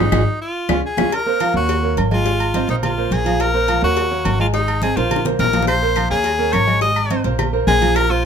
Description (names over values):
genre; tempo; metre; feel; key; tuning
latin, salsa; 211 BPM; 4/4; straight; Bb minor; A4 = 439 Hz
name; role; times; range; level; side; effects
edgy tenor saxophone; melody; 0.0-8.2 s; Eb4 to Eb5; -19 LUFS; left 2 dB; none
bright concert grand piano; accompaniment; 0.0-8.2 s; F3 to Ab5; -22 LUFS; right 4 dB; none
upright bass; bass; 0.0-8.3 s; Ab1 to Eb2; -21 LUFS; equal; none
bongos and cowbell; percussion; 0.1-8.1 s; none; -27 LUFS; left 8 dB; none
claves; percussion; 0.1-1.0, 5.7-8.1 s; none; -28 LUFS; left 9 dB; none
congas; percussion; 0.1-8.3 s; none; -27 LUFS; equal; none
timbales and agogo bells; percussion; 0.1-8.1 s; none; -27 LUFS; right 4 dB; none
room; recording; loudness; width
light reverb; minimal, uncompressed stereo recording; -15 LUFS; side -7 dB against mid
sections
0.0-1.1 A section; 1.1-8.3 B section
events
band accent 0.0-1.1; drum fill 5.0-5.7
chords
0.0 Ab5; 0.6 Db; 1.1 Bbmadd9; 1.7 Ebm7; 2.3 Abadd9; 2.8 Bbmadd9; 4.0 Ebm7; 4.5 Abadd9; 5.1 Bbmadd9; 6.2 Eb5; 6.8 Abadd9; 7.4 Bbsus2